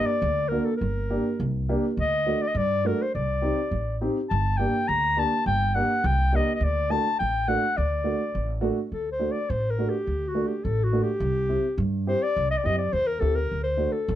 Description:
klezmer; 104 BPM; 2/4; straight; D phrygian dominant; A4 = 440 Hz
mellow clarinet; melody; 0.0-14.2 s; F#4 to Bb5; -26 LUFS; left 2 dB
dark upright piano; accompaniment; 0.0-13.9 s; A3 to G4; -28 LUFS; right 2 dB
upright bass; bass; 0.2-14.2 s; G1 to G2; -27 LUFS; right 1 dB
moderate small room reverb, RT60 0.6 s; dark, warm production; -23 LUFS; side -12 dB against mid
0.0-8.9 A section; 8.9-14.2 B section
clarinet solo 8.9-14.2
0.0 Gm; 2.0 D; 3.1 Cm; 4.3 Gm; 6.6 D; 11.2 C; 13.5 D
0.23 | 0.81 1.39 | 1.98 2.56 | 3.14 3.72 | 4.30 4.88 | 5.46 6.04 | 6.62 7.20 | 7.77 8.35 | 8.93 9.50 | 10.07 10.65 | 11.22 11.79 | 12.36 12.93 | 13.50 14.07

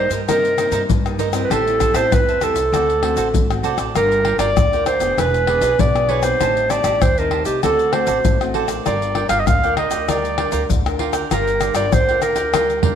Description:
samba and choro; 98 BPM; 4/4; straight; G minor; A4 = 440 Hz
clear clarinet; melody; 0.0-13.0 s; G4 to F5; -18 LUFS; right 1 dB
cavaquinho; accompaniment; 0.0-13.0 s; Eb4 to A5; -25 LUFS; right 9 dB
nylon-string guitar; accompaniment; 0.0-13.0 s; G2 to Bb4; -27 LUFS; left 7 dB
upright bass; bass; 0.0-12.9 s; E1 to G2; -26 LUFS; right 1 dB
tube shaker, pandeiro, surdo and tamborim; percussion; 0.1-13.0 s; -21 LUFS; left 3 dB
wet echo chamber reverb, RT60 1.4 s, small room ambience; 1960s-style stereo with parts hard left and right; -15 LUFS; side -8 dB against mid
0.0-13.0 A section
drum fill 12.5-13.0
0.0 Cm7; 1.5 Am7; 2.7 D7; 4.0 Gm7; 5.2 E7; 6.4 Am7b5; 7.6 D7; 8.9 Gm7
0.28 0.90 | 1.51 2.12 2.73 3.35 | 3.96 4.57 5.18 5.80 | 6.41 7.02 7.63 8.25 | 8.86 9.47 10.09 10.70 | 11.31 11.93 12.54

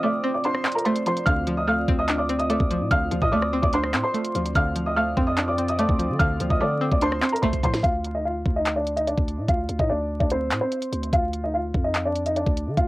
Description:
hip hop, drill; 146 BPM; 4/4; half-time; D phrygian; A4 = 440 Hz
warm upright piano; melody; 0.0-12.9 s; C4 to F6; -24 LUFS; equal; low-pass filter, cassette tape, tape echo
string-like resonator pluck; accompaniment; 0.0-7.8 s; D3 to D4; -26 LUFS; equal; chorus, phaser, cassette tape
dark analog pad; sustained chords; 0.0-7.8 s; C4 to D5; -32 LUFS; right 1 dB; chorus, cassette tape
drill drum kit; drums; 0.4-12.9 s; handclaps, hi-hat, kick drum, rim click, snare drum; -24 LUFS; equal; cassette tape
growling 808-style bass; bass; 1.3-12.9 s; D2 to D3; -28 LUFS; equal
little or no reverb; home recording on cassette, vinyl crackle; -21 LUFS; side -19 dB against mid
0.0-7.8 A section; 7.8-12.9 B section
break 0.0-1.3; drum fill 7.4-7.8; filter sweep on upright piano 7.8-12.9
0.0 Dm7
0.03 0.44 0.85 | 1.26 1.68 2.09 2.50 | 2.91 3.32 3.73 4.14 | 4.55 4.96 5.38 5.79 | 6.20 6.61 7.02 7.43 | 7.84 8.25 8.66 9.07 | 9.48 9.89 10.31 10.72 | 11.13 11.54 11.95 12.36 | 12.77

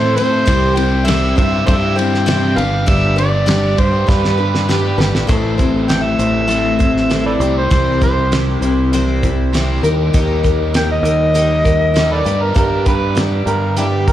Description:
folk rock and heartland rock; 99 BPM; 4/4; straight; C major; A4 = 440 Hz
overdriven harmonica; melody; 0.0-14.1 s; D4 to G5; -19 LUFS; right 1 dB; slapback echo, tape echo
picked twelve-string acoustic guitar; accompaniment; 0.0-14.1 s; A2 to C5; -19 LUFS; left 4 dB; slapback echo
biting overdriven guitar; riff; 0.0-14.1 s; G2 to A4; -22 LUFS; right 2 dB
fingered electric bass; bass; 0.0-14.1 s; G1 to A2; -18 LUFS; right 1 dB
damped 70s drum kit; drums; 0.2-14.1 s; hi-hat, kick drum, ride cymbal, snare drum; -18 LUFS; right 1 dB
little or no reverb; live gig heard through the venue's PA, club reverb, faint mains hum; -12 LUFS; side -12 dB against mid
0.0-5.3 A section; 5.3-14.1 B section
drum fill 4.1-5.3; harmonica solo 5.3-14.1
0.5 C; 2.6 G; 5.3 Am; 7.4 C; 9.8 Eb; 12.3 G
| 0.47 1.08 1.68 2.28 | 2.88 3.49 4.09 4.69 | 5.30 5.90 6.51 7.11 | 7.72 8.33 8.93 9.54 | 10.14 10.75 11.36 11.96 | 12.57 13.17 13.78

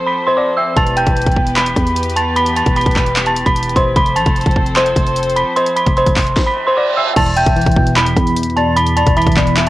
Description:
hip hop, trap; 150 BPM; 4/4; half-time; E phrygian; A4 = 441 Hz
dark detuned synth bell; melody; 0.0-9.7 s; C5 to B6; -15 LUFS; right 1 dB; chorus, low-pass filter, cassette tape
warm studio string section; sustained chords; 0.0-6.3 s; E3 to C5; -22 LUFS; left 2 dB; cassette tape
growling 808-style bass; bass; 0.8-9.7 s; E1 to E2; -20 LUFS; equal
trap drum kit; drums; 0.8-9.7 s; crash cymbal, handclaps, hi-hat, kick drum, snare drum; -16 LUFS; equal; overdrive, cassette tape
reverse cymbal; sound effects; 6.5-7.2 s; -22 LUFS; right 7 dB
warbly lo-fi synth keys; accompaniment; 7.2-9.7 s; E2 to E3; -17 LUFS; right 1 dB; chorus, low-pass filter, cassette tape
hollow clarinet-like synth lead; second line; 7.4-9.7 s; D5 to E5; -23 LUFS; left 9 dB; chorus, cassette tape, analog delay
light reverb, digital ambience; home recording on cassette; -12 LUFS; side -16 dB against mid
0.0-7.2 A section; 7.2-9.7 B section
break 0.0-0.8; reverse cymbal 6.5-7.2
0.0 F; 0.8 Em; 4.0 F; 7.2 Em
0.36 | 0.76 1.16 1.56 1.96 | 2.36 2.76 3.16 3.56 | 3.96 4.36 4.76 5.16 | 5.56 5.96 6.36 6.76 | 7.16 7.56 7.96 8.36 | 8.76 9.16 9.56

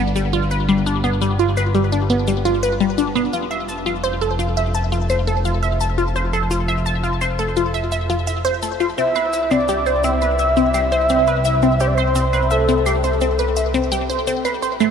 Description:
ambient, sequencer-driven space music; 85 BPM; 4/4; straight; C major; A4 = 437 Hz
resonant blip pluck; riff; 0.0-14.9 s; G3 to A5; -19 LUFS; left 1 dB; phaser, ping-pong delay
fat analog bass; bass; 0.0-14.9 s; F1 to C2; -22 LUFS; equal
cabasa and claves; percussion; 0.2-14.9 s; -31 LUFS; right 4 dB; ping-pong delay
breathy flute-like synth lead; melody; 9.0-13.2 s; A4 to E5; -19 LUFS; equal; analog chorus, ping-pong delay
wet huge ambient reverb, RT60 8.9 s; -16 LUFS; side -7 dB against mid
0.0-14.9 A section
0.0 G; 3.3 F; 9.0 C
| 0.51 1.21 1.92 2.63 | 3.33 4.04 4.74 5.45 | 6.16 6.86 7.57 8.27 | 8.98 9.69 10.39 11.10 | 11.80 12.51 13.21 13.92 | 14.63

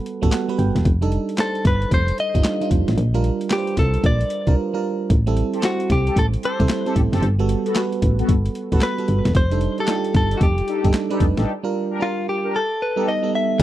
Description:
R&B, new jack swing; 113 BPM; 4/4; swing 63% on 16ths; A4 = 441 Hz
FM electric piano; accompaniment; 0.0-13.6 s; G3 to G5; -24 LUFS; right 5 dB; chorus
boom bap sampler-style drum kit; drums; 0.1-13.6 s; crash cymbal, handclaps, hi-hat, kick drum, snare drum, tambourine; -20 LUFS; equal
solid FM bass; bass; 0.2-13.6 s; E1 to C2; -19 LUFS; equal
direct-recorded clean electric guitar; melody; 1.4-13.6 s; F4 to E5; -24 LUFS; left 2 dB; tape echo
mellow synth brass; stabs; 5.5-13.1 s; B3 to Bb4; -28 LUFS; left 4 dB; chorus, phaser
little or no reverb; dry, close 1970s-style studio recording; -18 LUFS; side -14 dB against mid
0.0-13.6 A section
FM electric piano fill 0.1-0.9; break 4.6-5.1, 11.5-13.6
0.0 Gmaj9; 0.9 F13; 3.0 Bb6; 5.1 Am7; 7.2 Gmaj9; 9.3 F13; 11.5 Bb6; 12.5 B7b13
0.32 | 0.85 1.38 1.92 2.45 | 2.98 3.51 4.04 4.57 | 5.10 5.63 6.16 6.69 | 7.22 7.75 8.29 8.82 | 9.35 9.88 10.41 10.94 | 11.47 12.00 12.53 13.06 | 13.60

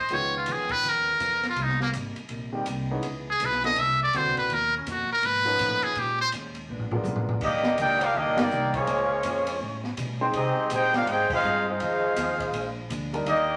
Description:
jazz, big band swing; 164 BPM; 4/4; swing 64% on 8ths; Eb major from 7.4 s; A4 = 440 Hz
trumpet with metal mute; melody; 0.0-6.3 s; Bb3 to E5; -26 LUFS; equal
clear grand piano; accompaniment; 0.1-10.7, 13.1-13.3 s; Eb3 to G5; -34 LUFS; equal
vintage hollow-body jazz guitar; accompaniment; 0.1-13.5 s; F2 to A4; -41 LUFS; equal
upright bass; bass; 0.1-13.6 s; G1 to C3; -38 LUFS; equal
open jazz drum kit; drums; 0.1-13.4 s; crash cymbal, hi-hat, kick drum, ride cymbal, snare drum, toms; -37 LUFS; equal
warm trumpet section; melody; 7.4-13.6 s; Bb3 to G5; -27 LUFS; equal
muted trombone section; second line; 7.4-13.6 s; F3 to G4; -33 LUFS; equal
wet large studio reverb, RT60 0.9 s; -26 LUFS; mono
0.0-7.4 A section; 7.4-13.6 B section
muted trumpet solo 0.0-7.4; drum fill 6.7-7.4; band accent 8.3, 11.3
0.1 Db9; 1.6 Cm7; 3.0 Dbm7; 3.8 C13; 4.5 Bmaj9#11; 6.0 Bbm7; 6.7 Bb7b9; 7.4 Ebmaj7; 8.9 Bbm7; 9.6 A7#11; 10.3 Abmaj7; 11.8 Fm7; 12.5 Bb7
| 0.10 0.47 0.84 1.20 | 1.57 1.94 2.30 2.67 | 3.04 3.40 3.77 4.13 | 4.50 4.86 5.23 5.59 | 5.96 6.33 6.69 7.06 | 7.42 7.79 8.15 8.52 | 8.88 9.25 9.61 9.98 | 10.34 10.71 11.07 11.44 | 11.80 12.17 12.54 12.90 | 13.27

